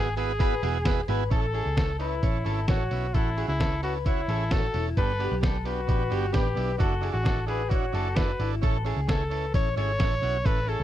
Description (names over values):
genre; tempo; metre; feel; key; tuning
jangly indie pop; 131 BPM; 4/4; straight; A major; A4 = 440 Hz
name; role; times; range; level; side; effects
clear trumpet; melody; 0.0-10.8 s; E4 to C#5; -31 LUFS; left 2 dB; tape echo
overdriven combo organ; accompaniment; 0.0-10.8 s; B3 to B4; -34 LUFS; right 16 dB; none
electric guitar through a small old amp; arpeggios; 0.0-10.8 s; E4 to C#5; -34 LUFS; left 5 dB; spring reverb
vintage muted picked electric bass; bass; 0.0-10.8 s; E1 to C#2; -29 LUFS; equal; none
lo-fi sampler-style drum kit; drums; 0.2-10.8 s; hi-hat, kick drum, snare drum; -27 LUFS; equal; none
room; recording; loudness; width
little or no reverb; dry, close 1970s-style studio recording; -24 LUFS; side -12 dB against mid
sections
0.0-1.3 A section; 1.3-10.8 B section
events
none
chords
0.0 Eadd9; 1.3 A; 5.0 G; 6.8 Dadd9/F#; 8.6 A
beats
0.40 0.86 | 1.32 1.77 2.23 2.69 | 3.15 3.60 4.06 4.52 | 4.97 5.43 5.89 6.35 | 6.80 7.26 7.72 8.17 | 8.63 9.09 9.54 10.00 | 10.46